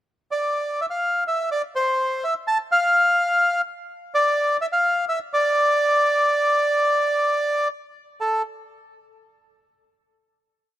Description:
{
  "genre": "tango",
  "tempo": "126 BPM",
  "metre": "4/4",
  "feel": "rubato",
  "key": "unclear",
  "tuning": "A4 = 439 Hz",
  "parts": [
    { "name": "bandoneon", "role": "solo", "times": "0.3-8.4 s", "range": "A4 to A5", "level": "-19 LUFS", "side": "equal", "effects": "none" }
  ],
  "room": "light reverb, small room ambience",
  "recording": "rough home demo mix",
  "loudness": "-19 LUFS",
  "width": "side -13 dB against mid",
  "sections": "0.0-0.5 pickup bar; 0.5-8.2 A section; 8.2-10.1 final note",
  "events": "none",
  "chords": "none"
}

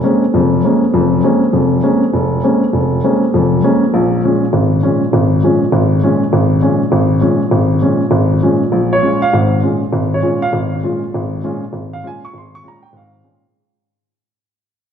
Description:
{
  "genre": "jazz",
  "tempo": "200 BPM",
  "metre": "4/4",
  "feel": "swing 60% on 8ths",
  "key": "unclear",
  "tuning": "A4 = 442 Hz",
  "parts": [
    { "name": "warm baby grand piano", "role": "solo", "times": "0.0-13.4 s", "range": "F1 to Db6", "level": "-12 LUFS", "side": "equal", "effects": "none" }
  ],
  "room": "wet scoring stage reverb, RT60 1.7 s",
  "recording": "recorded in a church or concert hall",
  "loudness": "-11 LUFS",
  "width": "side -8 dB against mid",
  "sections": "0.0-8.7 A section; 8.7-13.5 B section",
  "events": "fade-out 8.7-13.5",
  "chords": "0.0 Bbm9; 3.9 Db"
}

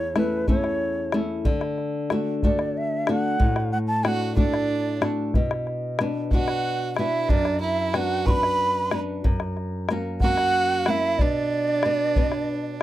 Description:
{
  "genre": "andean folk, Andean ensemble",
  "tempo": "62 BPM (dotted quarters)",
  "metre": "6/8",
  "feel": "straight",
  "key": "B minor",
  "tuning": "A4 = 440 Hz",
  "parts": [
    { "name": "mellow large quena", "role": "melody", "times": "0.0-12.8 s", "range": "B4 to C#6", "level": "-25 LUFS", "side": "right 2 dB", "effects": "none" },
    { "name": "flamenco guitar", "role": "accompaniment", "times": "0.0-12.8 s", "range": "E2 to F#4", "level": "-26 LUFS", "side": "left 1 dB", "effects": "none" },
    { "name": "bombo", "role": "percussion", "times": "0.2-12.8 s", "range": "none", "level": "-22 LUFS", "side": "left 1 dB", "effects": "none" },
    { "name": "clear violin", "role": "second line", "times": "4.0-12.8 s", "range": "D4 to B4", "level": "-28 LUFS", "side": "right 5 dB", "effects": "none" }
  ],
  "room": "light reverb",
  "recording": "dry, close 1970s-style studio recording",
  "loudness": "-21 LUFS",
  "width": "side -14 dB against mid",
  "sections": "0.0-12.8 A section",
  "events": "none",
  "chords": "0.0 A; 1.4 D; 5.3 Bm; 9.2 F#; 11.2 Bm"
}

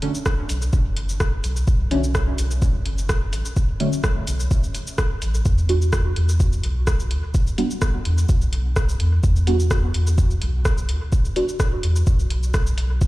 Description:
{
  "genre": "dub techno",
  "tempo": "127 BPM",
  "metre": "4/4",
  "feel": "swing 53% on 16ths",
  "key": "E minor",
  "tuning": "A4 = 440 Hz",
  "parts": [
    { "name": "deep mellow chord stab", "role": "stabs", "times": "0.0-11.5 s", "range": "D3 to F#4", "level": "-27 LUFS", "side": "right 1 dB", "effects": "chorus, phaser, sidechain pumping, dub echo" },
    { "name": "soft vintage rhythm box", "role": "drums", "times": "0.0-13.1 s", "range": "hi-hat, rim click, shaker", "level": "-30 LUFS", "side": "equal", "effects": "dub echo" },
    { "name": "electronic kick drum", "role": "drums", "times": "0.3-13.1 s", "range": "none", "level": "-20 LUFS", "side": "equal", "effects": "none" },
    { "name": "soft dub sub bass", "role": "bass", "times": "0.5-13.1 s", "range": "F#1 to E2", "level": "-21 LUFS", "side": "equal", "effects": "sidechain pumping" }
  ],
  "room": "digital ambience",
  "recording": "played on a big sound system in a bare room, large studio reverb",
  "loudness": "-18 LUFS",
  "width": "side -18 dB against mid",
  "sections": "0.0-5.5 A section; 5.5-13.1 A section",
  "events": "none",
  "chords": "0.0 Bm7; 5.5 E7(no3)"
}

